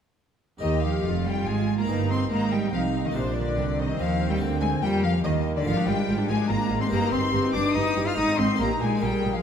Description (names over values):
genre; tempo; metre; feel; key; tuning
classical, baroque-style concerto movement with solo episodes; 142 BPM; 3/4; straight; Eb major; A4 = 442 Hz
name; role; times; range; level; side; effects
rich cello; melody; 0.6-9.4 s; C3 to F4; -26 LUFS; left 2 dB; none
rich chamber violin section; melody; 0.6-9.4 s; C5 to F6; -33 LUFS; left 6 dB; none
clear studio violin section; second line; 0.6-9.4 s; C5 to F6; -32 LUFS; left 4 dB; none
harpsichord; accompaniment; 0.6-9.4 s; Eb2 to Bb4; -32 LUFS; right 1 dB; none
rich chamber viola section; accompaniment; 0.6-9.4 s; Bb3 to Bb4; -33 LUFS; left 1 dB; none
dark chamber cello section; bass; 0.6-9.3 s; Eb2 to F3; -30 LUFS; right 4 dB; none
rich chamber double bass section; bass; 0.6-9.3 s; F1 to F2; -30 LUFS; right 4 dB; none
room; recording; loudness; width
moderate concert hall reverb, RT60 2.4 s; dark, warm production; -22 LUFS; side -8 dB against mid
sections
0.6-9.4 A section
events
none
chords
0.6 Eb; 1.9 Eb/G; 3.1 Bb; 4.4 Bb/D; 5.7 Bb7/Ab; 6.9 Eb/G; 8.2 Ab; 8.6 Eb/Bb